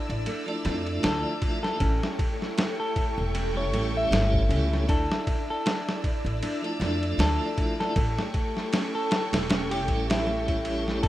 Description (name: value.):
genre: trip hop.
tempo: 78 BPM.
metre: 4/4.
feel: swing 57% on 16ths.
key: unclear.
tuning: A4 = 443 Hz.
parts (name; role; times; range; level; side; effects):
string machine, cellos; sustained chords; 0.0-11.1 s; A4 to E6; -34 LUFS; equal; ensemble chorus.
bowed-like drone; texture; 0.0-11.1 s; E4; -41 LUFS; left 2 dB; built-in reverb.
upright bass; bass; 0.1-11.1 s; E1 to F2; -28 LUFS; equal; none.
boom bap sampler-style drum kit; drums; 0.1-11.1 s; kick drum, ride cymbal, snare drum; -28 LUFS; equal; none.
nylon-string guitar; arpeggios; 0.3-11.1 s; A3 to D4; -37 LUFS; right 1 dB; digital delay.
tonewheel organ; accompaniment; 0.5-11.0 s; F3 to E4; -33 LUFS; right 1 dB; slow rotary speaker, tremolo.
semi-hollow electric guitar; melody; 1.0-11.1 s; E4 to E5; -32 LUFS; left 1 dB; spring reverb, tape echo.
room: digital ambience.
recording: rough home demo mix.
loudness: -24 LUFS.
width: side -14 dB against mid.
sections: 0.0-11.1 A section.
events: none.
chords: 0.0 Dmadd9; 1.8 A7; 4.9 Dmadd9; 8.0 A7.